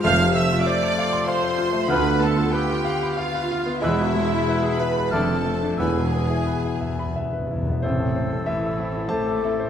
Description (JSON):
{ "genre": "classical, romantic movement for piano and orchestra", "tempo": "87-99 BPM", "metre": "3/4", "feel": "rubato", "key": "A minor", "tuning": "A4 = 441 Hz", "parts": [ { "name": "clear grand piano", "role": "melody", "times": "0.0-9.7 s", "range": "A1 to C6", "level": "-24 LUFS", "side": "left 2 dB", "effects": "none" }, { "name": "rich chamber violin section", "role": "melody", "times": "0.0-9.5 s", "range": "C4 to F6", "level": "-32 LUFS", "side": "left 1 dB", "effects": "none" }, { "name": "clear oboe", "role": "second line", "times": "0.0-9.7 s", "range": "A4 to D5", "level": "-36 LUFS", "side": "right 2 dB", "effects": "none" }, { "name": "rich chamber violin section", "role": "second line", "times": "0.0-9.5 s", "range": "A3 to F5", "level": "-32 LUFS", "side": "right 1 dB", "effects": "none" }, { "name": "warm clarinet", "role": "second line", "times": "0.0-9.7 s", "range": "C4 to A4", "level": "-35 LUFS", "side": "equal", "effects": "none" }, { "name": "rich studio viola section", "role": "accompaniment", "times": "0.0-9.5 s", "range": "A3 to F5", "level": "-30 LUFS", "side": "right 3 dB", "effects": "none" }, { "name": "warm bassoon", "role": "accompaniment", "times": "0.0-9.7 s", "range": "G#3 to B3", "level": "-32 LUFS", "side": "right 3 dB", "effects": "none" }, { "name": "mellow French horn section", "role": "sustained chords", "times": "0.0-9.7 s", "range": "G#3 to A4", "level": "-31 LUFS", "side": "left 5 dB", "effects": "none" }, { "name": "dark trumpet section", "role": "stabs", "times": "0.0-7.1 s", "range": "E4 to F5", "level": "-29 LUFS", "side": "right 1 dB", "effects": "none" }, { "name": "clear chamber double bass section", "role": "bass", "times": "0.0-9.6 s", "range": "E1 to D2", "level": "-31 LUFS", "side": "right 4 dB", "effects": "none" }, { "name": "mellow tuba", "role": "bass", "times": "0.0-6.4 s", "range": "E1 to D2", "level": "-30 LUFS", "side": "right 4 dB", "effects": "none" }, { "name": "rich symphonic cello section", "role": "bass", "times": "0.0-9.7 s", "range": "D2 to A3", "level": "-30 LUFS", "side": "right 4 dB", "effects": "none" }, { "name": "bright silver concert flute", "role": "second line", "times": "0.1-9.7 s", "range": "D6 to F6", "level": "-33 LUFS", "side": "left 1 dB", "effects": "none" }, { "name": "timpani", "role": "percussion", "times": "5.8-8.7 s", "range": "E2 to A2", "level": "-29 LUFS", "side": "left 1 dB", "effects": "none" } ], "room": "moderate concert hall reverb, RT60 1.9 s", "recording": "none", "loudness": "-20 LUFS", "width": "side -8 dB against mid", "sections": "0.0-7.8 A section; 7.8-9.7 B section", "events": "timpani fill 5.8-7.8", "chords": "0.1 F; 1.9 Bdim/D; 3.8 E; 5.1 Dm/F; 5.8 E; 7.8 Am" }